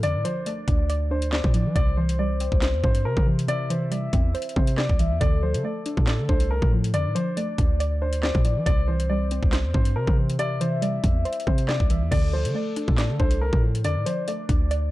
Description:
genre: hip hop, drill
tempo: 139 BPM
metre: 4/4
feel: half-time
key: D minor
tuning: A4 = 442 Hz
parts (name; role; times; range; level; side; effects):
- dark baby grand piano; melody; 0.0-14.7 s; Bb4 to D5; -30 LUFS; left 2 dB; low-pass filter, digital delay
- soft octave-layered synth lead; second line; 0.0-14.9 s; A4 to E5; -33 LUFS; left 3 dB; chorus, phaser, digital delay
- soft round pluck; accompaniment; 0.0-14.9 s; C3 to D5; -30 LUFS; right 1 dB; chorus, low-pass filter
- hard-hitting 808-style bass; bass; 0.0-14.9 s; C2 to F3; -24 LUFS; equal; none
- drill drum kit; drums; 0.0-14.8 s; crash cymbal, handclaps, hi-hat, kick drum, rim click, snare drum; -24 LUFS; equal; none
room: digital ambience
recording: dark, warm production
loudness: -21 LUFS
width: side -17 dB against mid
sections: 0.0-12.1 A section; 12.1-14.9 A section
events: none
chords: 0.0 Dm; 1.8 C; 5.2 Dm; 8.7 C; 12.1 Dm

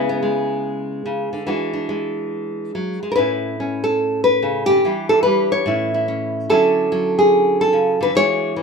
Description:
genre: solo jazz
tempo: 144 BPM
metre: 4/4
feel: swing 66% on 8ths, rubato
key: A major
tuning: A4 = 440 Hz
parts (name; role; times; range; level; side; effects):
- nylon-string guitar; solo; 0.0-8.6 s; A2 to C#5; -16 LUFS; equal; none
room: moderate club reverb, RT60 0.8 s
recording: minimal, uncompressed stereo recording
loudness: -16 LUFS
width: side -5 dB against mid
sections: 0.0-8.6 A section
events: none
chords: 0.0 C#m7; 1.5 E9; 3.2 Aadd9; 4.8 Em7; 5.7 A; 6.5 Dmaj9

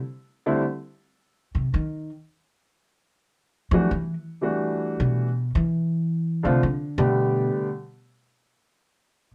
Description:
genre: jazz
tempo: 110 BPM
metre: 4/4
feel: swing 68% on 8ths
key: G major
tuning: A4 = 440 Hz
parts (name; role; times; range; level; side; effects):
- clear concert grand piano; melody; 0.5-7.7 s; D3 to G4; -26 LUFS; equal; none
- upright bass; bass; 1.5-7.5 s; B2 to F3; -26 LUFS; equal; none
room: light reverb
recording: dark, warm production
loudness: -25 LUFS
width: mono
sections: 0.0-9.3 A section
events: upright bass solo 0.0-9.3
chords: 0.0 N.C.; 2.8 Em11; 6.1 Dm7; 7.2 Gadd9; 8.2 N.C.

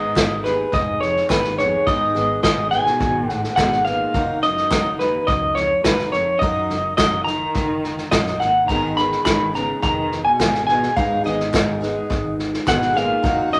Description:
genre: indie folk with a building arrangement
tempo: 106 BPM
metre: 4/4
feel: straight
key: unclear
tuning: A4 = 440 Hz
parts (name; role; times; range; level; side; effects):
- electric guitar through a small old amp; melody; 0.0-13.6 s; Cb5 to Cb6; -22 LUFS; equal; tremolo
- warm cello; second line; 0.0-13.6 s; Eb2 to Eb3; -31 LUFS; equal; none
- picked twelve-string acoustic guitar; accompaniment; 0.0-13.6 s; Ab2 to Bb4; -29 LUFS; equal; none
- fingered electric bass; bass; 0.0-13.6 s; F1 to Ab2; -35 LUFS; equal; none
- unplugged drum kit; drums; 0.2-13.6 s; kick drum, snare drum; -25 LUFS; equal; none
- group handclap; percussion; 0.2-12.8 s; none; -33 LUFS; equal; none
- tambourine; percussion; 0.2-12.8 s; none; -45 LUFS; equal; none
room: wet small room reverb, RT60 0.5 s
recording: none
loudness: -19 LUFS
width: mono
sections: 0.0-13.6 A section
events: none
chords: 0.0 Abm; 4.1 Ebm/Gb; 8.7 Abm

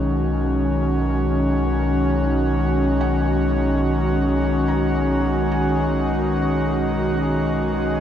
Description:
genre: ambient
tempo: free time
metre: none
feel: none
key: B major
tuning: A4 = 442 Hz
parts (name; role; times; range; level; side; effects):
- airy breathy pad; sustained chords; 0.0-8.0 s; D#3 to F#4; -19 LUFS; equal; chorus
- felt-muted upright piano; arpeggios; 0.0-8.0 s; A#3 to A#5; -37 LUFS; equal; none
- warm sub bass; bass; 0.0-8.0 s; B1; -24 LUFS; equal; none
- overtone-sweeping drone; drone; 0.0-8.0 s; B2 to D#5; -35 LUFS; right 4 dB; none
room: moderate plate reverb, RT60 3.5 s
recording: echo-heavy mix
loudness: -18 LUFS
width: side -9 dB against mid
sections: 0.0-8.0 A section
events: none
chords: 0.0 Bmaj7

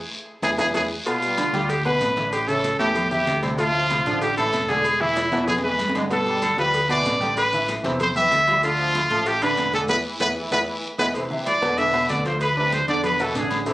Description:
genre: latin, salsa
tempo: 190 BPM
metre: 4/4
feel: straight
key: unclear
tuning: A4 = 440 Hz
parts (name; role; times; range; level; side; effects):
- bright trumpet; melody; 0.4-13.6 s; E4 to E5; -21 LUFS; equal; none
- clear baby grand piano; accompaniment; 0.4-13.7 s; A2 to D6; -27 LUFS; right 1 dB; none
- modern bright fingered electric bass; bass; 0.4-13.7 s; E1 to G2; -30 LUFS; equal; none
- bongos and cowbell; percussion; 0.4-13.7 s; none; -33 LUFS; left 2 dB; none
- congas; percussion; 0.4-13.7 s; none; -36 LUFS; left 1 dB; none
- guiro; percussion; 0.4-13.7 s; none; -36 LUFS; left 1 dB; none
- maracas; percussion; 0.4-13.7 s; none; -43 LUFS; right 2 dB; none
- timbales and agogo bells; percussion; 0.4-13.7 s; none; -32 LUFS; right 2 dB; none
- mellow trombone section; second line; 1.2-13.7 s; C3 to G#3; -32 LUFS; equal; none
room: light reverb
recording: recorded on a phone in the room, studio ambience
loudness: -19 LUFS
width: side -17 dB against mid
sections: 0.0-1.1 A section; 1.1-11.1 B section; 11.1-13.7 C section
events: drum fill 0.0-1.1, 5.2-6.1, 10.2-11.1; band accent 0.0-1.1, 9.9-11.1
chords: 0.0 E; 1.1 G; 2.3 A7; 3.6 Dm7; 4.8 E; 6.1 G7; 7.4 Am7; 8.6 Dm; 9.9 E; 11.1 Cmaj9; 11.8 E5; 12.4 Dm; 13.0 E5

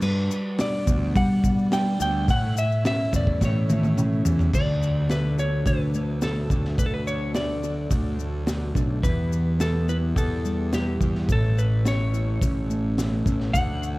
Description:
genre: psychedelic rock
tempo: 107 BPM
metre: 4/4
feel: straight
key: unclear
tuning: A4 = 439 Hz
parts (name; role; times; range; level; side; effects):
- clean lap steel guitar; melody; 0.0-14.0 s; G4 to G5; -30 LUFS; equal; tape echo
- tonewheel organ; sustained chords; 0.0-14.0 s; E3 to E5; -39 LUFS; right 3 dB; slow rotary speaker
- mellow electric guitar; riff; 0.0-14.0 s; A2 to F#4; -26 LUFS; equal; rotary speaker, tape echo
- fuzz picked electric bass; bass; 0.0-14.0 s; A1 to G3; -26 LUFS; equal; overdrive
- crunchy breakbeat drum kit; drums; 0.0-13.7 s; crash cymbal, hi-hat, kick drum, snare drum, toms; -26 LUFS; equal; none
- maracas; percussion; 0.0-14.0 s; none; -41 LUFS; left 11 dB; tape echo
room: studio ambience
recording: echo-heavy mix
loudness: -21 LUFS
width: side -20 dB against mid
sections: 0.0-4.5 A section; 4.5-14.0 B section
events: drum fill 3.4-4.5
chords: 0.0 Gmaj7; 2.3 A; 4.5 D; 9.0 Em; 11.3 A

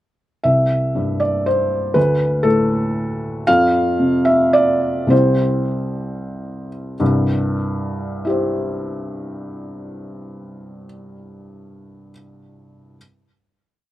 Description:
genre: neoclassical minimalist piano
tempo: 91-122 BPM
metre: 3/4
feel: rubato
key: C major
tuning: A4 = 441 Hz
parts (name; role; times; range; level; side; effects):
- felt-muted upright piano; solo; 0.4-13.0 s; C2 to F5; -17 LUFS; equal; slapback echo
room: little or no reverb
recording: recorded outdoors, with no room sound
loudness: -16 LUFS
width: side -14 dB against mid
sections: 0.5-7.0 A section; 7.0-10.8 final chord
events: slowing down 2.7-7.0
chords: 0.5 C; 2.0 D5; 3.5 F5; 5.1 C

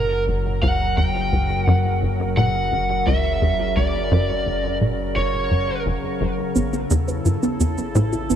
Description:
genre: ambient, sequencer-driven space music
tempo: 86 BPM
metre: 4/4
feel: straight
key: unclear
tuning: A4 = 440 Hz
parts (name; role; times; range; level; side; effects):
- lead guitar through a small cranked amp; melody; 0.0-5.8 s; A#4 to G5; -24 LUFS; right 1 dB; overdrive, tape echo
- evolving wavetable pad; sustained chords; 0.0-8.4 s; C#3 to A#4; -26 LUFS; left 1 dB; chorus, built-in reverb
- tight sequencer bass; riff; 0.0-8.4 s; F#1 to A#2; -21 LUFS; equal; ensemble chorus, tape echo
- analog drone; bass; 0.0-8.4 s; F#1 to A1; -27 LUFS; equal; chorus
- soft round pluck; arpeggios; 6.6-8.4 s; B3 to B4; -24 LUFS; right 2 dB; chorus, auto-pan, tape echo
- cabasa; percussion; 6.6-8.4 s; none; -33 LUFS; right 6 dB; none
room: moderate plate reverb, RT60 3.3 s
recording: none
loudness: -18 LUFS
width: side -9 dB against mid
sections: 0.0-8.4 A section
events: fade-in on ambient pad 0.0-8.4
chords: 0.0 F#; 6.6 A

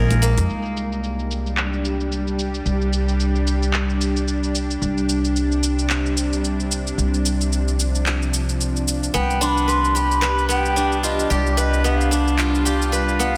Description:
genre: organic downtempo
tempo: 111 BPM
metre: 4/4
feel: swing 57% on 16ths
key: unclear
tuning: A4 = 438 Hz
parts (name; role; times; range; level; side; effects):
- bowed-like drone; sustained chords; 0.3-13.4 s; C3 to G4; -27 LUFS; equal; built-in reverb
- steel-string zither; arpeggios; 0.0-3.4, 9.1-13.4 s; Bb3 to B4; -25 LUFS; equal; tape echo
- upright bass; bass; 0.0-13.4 s; Bb1 to F2; -24 LUFS; equal; none
- afro-pop drum kit; drums; 0.1-13.3 s; cabasa, handclaps, hi-hat; -29 LUFS; equal; low-pass filter on hats, studio reverb, low-pass filter on perc, low-pass filter on snare
- bongos and congas; percussion; 0.1-0.5 s; none; -36 LUFS; equal; none
- mellow bansuri; melody; 9.1-13.4 s; D5 to C6; -25 LUFS; equal; tape echo
room: moderate echo chamber reverb, RT60 2.2 s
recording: dense, heavily limited modern master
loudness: -21 LUFS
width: mono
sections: 0.5-13.4 A section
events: none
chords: 0.5 G5/C; 4.8 C5; 9.1 G7/C

